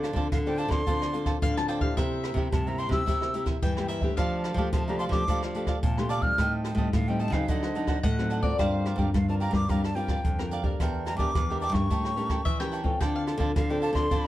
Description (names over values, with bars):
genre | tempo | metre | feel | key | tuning
samba and choro | 109 BPM | 4/4 | straight | D minor | A4 = 440 Hz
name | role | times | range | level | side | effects
cavaquinho | accompaniment | 0.0-14.2 s | D4 to G5 | -35 LUFS | right 4 dB | none
nylon-string guitar | accompaniment | 0.0-14.3 s | G2 to Bb4 | -33 LUFS | left 2 dB | none
nylon-string guitar | bass | 0.0-14.3 s | E2 to F3 | -30 LUFS | equal | none
jazz brush drum kit | drums | 0.0-14.2 s | hi-hat, kick drum, rim click | -29 LUFS | equal | none
breathy silver concert flute | melody | 0.3-14.3 s | Eb5 to F6 | -32 LUFS | equal | plate reverb
mandolin | second line | 1.4-4.6, 8.0-9.0, 12.5-13.2 s | C5 to A5 | -33 LUFS | left 4 dB | none
room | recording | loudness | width
light reverb | dark, warm production | -24 LUFS | side -14 dB against mid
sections
0.0-14.3 A section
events
none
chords
0.0 Dm7; 2.0 C7; 4.2 F69; 6.4 Am7b5; 7.5 D7b9; 8.6 Gm7; 10.8 Em7b5; 11.9 A7b9; 13.0 Dm7